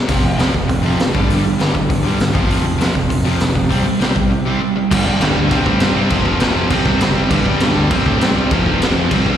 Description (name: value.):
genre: punk rock.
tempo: 200 BPM.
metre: 4/4.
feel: straight.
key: unclear.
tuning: A4 = 440 Hz.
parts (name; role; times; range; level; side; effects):
fuzz picked electric bass; bass; 0.0-9.4 s; F1 to A2; -20 LUFS; left 1 dB; overdrive.
overdriven electric guitar; riff; 0.1-9.4 s; F2 to C4; -21 LUFS; left 12 dB; none.
sludgy distorted guitar; riff; 0.1-9.4 s; F2 to C4; -18 LUFS; right 6 dB; overdrive, slapback echo.
raw garage drum kit; drums; 0.1-9.3 s; crash cymbal, hi-hat, kick drum, snare drum; -18 LUFS; equal; none.
scooped high-gain guitar; riff; 4.9-9.4 s; F2 to C4; -22 LUFS; right 1 dB; distortion, slapback echo.
room: small room ambience.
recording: live gig heard through the venue's PA, recital hall reverb.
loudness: -13 LUFS.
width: side -10 dB against mid.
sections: 0.0-4.9 A section; 4.9-9.4 B section.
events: none.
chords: 0.1 F5; 1.1 G5; 2.3 F5; 3.7 C5; 4.9 G5; 5.5 C5; 6.1 F5; 6.7 C5; 7.3 G5; 7.9 C5; 8.5 F5.